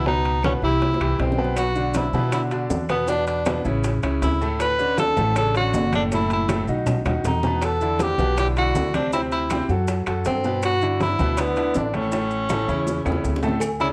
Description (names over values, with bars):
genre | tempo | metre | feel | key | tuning
latin, salsa | 159 BPM | 4/4 | straight | D major | A4 = 440 Hz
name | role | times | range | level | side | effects
bright tenor saxophone | melody | 0.0-13.9 s | B3 to B4 | -26 LUFS | equal | none
bright grand piano | accompaniment | 0.0-13.9 s | A2 to C5 | -28 LUFS | equal | none
upright bass | bass | 0.0-13.9 s | F#1 to B2 | -28 LUFS | equal | none
bongos and cowbell | percussion | 0.1-13.8 s | none | -34 LUFS | equal | none
congas | percussion | 0.1-13.9 s | none | -32 LUFS | equal | none
timbales and agogo bells | percussion | 0.3-13.8 s | none | -35 LUFS | equal | none
claves | percussion | 0.4-13.8 s | none | -43 LUFS | equal | none
maracas | percussion | 1.6-13.9 s | none | -44 LUFS | equal | none
room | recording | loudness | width
moderate large studio reverb, RT60 1.0 s | worn, warbling old tape, cassette tape, warbly pitch drift | -22 LUFS | mono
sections
0.0-13.6 A section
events
drum fill 0.8-1.6, 6.5-7.6, 12.1-13.6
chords
0.1 C#m7; 0.8 C; 1.6 Bmadd11; 3.1 E5; 3.8 A; 4.6 Dmaj7; 6.1 F#m7; 6.9 B; 7.6 Em9; 9.1 D13; 10.6 G69; 12.1 A